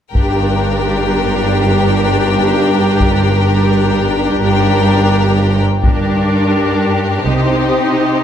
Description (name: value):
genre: cinematic, epic orchestral film score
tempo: free time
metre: none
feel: none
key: G minor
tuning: A4 = 440 Hz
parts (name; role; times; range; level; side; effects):
- clear studio violin section; second line; 0.1-8.2 s; G4 to G5; -18 LUFS; left 5 dB; none
- rich symphonic cello section; bass; 0.1-8.2 s; G2 to C3; -16 LUFS; right 1 dB; none
- rich symphonic double bass section; bass; 0.1-7.7 s; G1 to C2; -18 LUFS; right 2 dB; none
- rich symphonic viola section; accompaniment; 0.2-8.2 s; D4 to G4; -17 LUFS; equal; none
- taiko ensemble; drums; 0.2-6.7 s; none; -16 LUFS; left 1 dB; none
- warm symphonic violin section; melody; 5.9-8.2 s; Bb4 to C5; -21 LUFS; left 4 dB; none
room: moderate concert hall reverb, RT60 2.2 s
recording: none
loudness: -11 LUFS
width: side -9 dB against mid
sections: 0.2-5.8 A section; 5.8-8.2 B section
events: build-up 5.8-8.2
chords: 0.2 Gm; 7.3 Cm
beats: free time